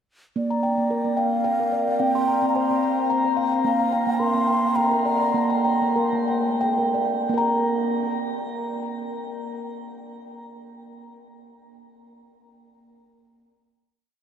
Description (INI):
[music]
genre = world meditative, meditative tuned percussion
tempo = 82-110 BPM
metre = 3/4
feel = swing 53% on 16ths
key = Bb major pentatonic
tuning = A4 = 440 Hz
[part]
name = breathy mellow bansuri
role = melody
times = 0.4-5.6 s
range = D5 to C6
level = -26 LUFS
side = equal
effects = shimmer reverb, diffuse ambient delay
[part]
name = steel tongue drum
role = arpeggios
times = 0.4-11.0 s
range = Bb3 to C6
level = -22 LUFS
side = equal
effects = shimmer reverb, diffuse ambient delay
[sound]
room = wet huge ambient reverb, RT60 7.8 s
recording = dreamy mix soaked in reverb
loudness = -20 LUFS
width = side -8 dB against mid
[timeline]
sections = 0.4-7.3 A section; 7.3-11.6 final note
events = slowing down 3.6-7.3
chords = 0.4 Bb; 2.0 C5; 3.6 Bb; 7.3 N.C.